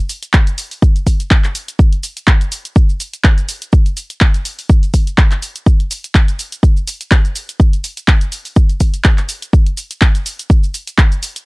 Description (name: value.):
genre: house.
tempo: 124 BPM.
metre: 4/4.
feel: swing 55% on 16ths.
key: none.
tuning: none.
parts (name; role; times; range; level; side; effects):
punchy analog drum machine; drums; 0.1-11.4 s; handclaps, hi-hat, shaker; -19 LUFS; equal; overdrive, sidechain pumping on hats, sidechain pumping on cymbals, sidechain pumping on perc.
electronic kick drum; drums; 0.3-11.1 s; none; -10 LUFS; equal; none.
room: little or no reverb.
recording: dry, gritty hardware recording, transformer saturation, cassette tape.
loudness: -12 LUFS.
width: side -27 dB against mid.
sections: 0.0-11.5 A section.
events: none.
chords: none.